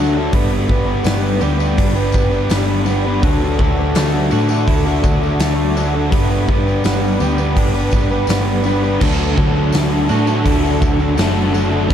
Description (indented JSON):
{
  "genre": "rock, shoegaze and dream pop",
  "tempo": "83 BPM",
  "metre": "4/4",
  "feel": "straight",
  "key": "unclear",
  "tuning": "A4 = 440 Hz",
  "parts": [
    { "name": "glassy FM pad", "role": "sustained chords", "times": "0.0-11.9 s", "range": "A4 to D6", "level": "-28 LUFS", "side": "left 2 dB", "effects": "ensemble chorus, built-in reverb" },
    { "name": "direct-recorded clean electric guitar", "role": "arpeggios", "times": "0.0-11.9 s", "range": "F#3 to A4", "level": "-28 LUFS", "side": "right 11 dB", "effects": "lush chorus, analog delay" },
    { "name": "crunchy overdriven guitar", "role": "riff", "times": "0.0-11.9 s", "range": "D3 to B4", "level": "-21 LUFS", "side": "right 9 dB", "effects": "reverse reverb" },
    { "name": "overdriven electric guitar", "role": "riff", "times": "0.0-11.9 s", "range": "D3 to B4", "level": "-21 LUFS", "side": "left 10 dB", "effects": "wide subtle chorus" },
    { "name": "hollow-body short-scale picked electric bass", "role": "bass", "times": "0.0-11.9 s", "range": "F#1 to A2", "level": "-19 LUFS", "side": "equal", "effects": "none" },
    { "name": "huge arena drum kit", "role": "drums", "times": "0.3-11.9 s", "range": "crash cymbal, hi-hat, kick drum, snare drum", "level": "-19 LUFS", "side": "equal", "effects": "none" },
    { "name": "tambourine", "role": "percussion", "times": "0.7-11.7 s", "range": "none", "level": "-37 LUFS", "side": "left 14 dB", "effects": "none" },
    { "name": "crunchy overdriven guitar", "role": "riff", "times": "9.0-11.9 s", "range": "G2 to D4", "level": "-21 LUFS", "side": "right 2 dB", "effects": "none" }
  ],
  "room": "small room ambience",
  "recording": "dark, warm production",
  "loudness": "-13 LUFS",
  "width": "side -9 dB against mid",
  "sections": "0.0-11.9 A section",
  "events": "none",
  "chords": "0.3 G; 3.2 Dadd9; 6.1 G; 9.0 Dadd9"
}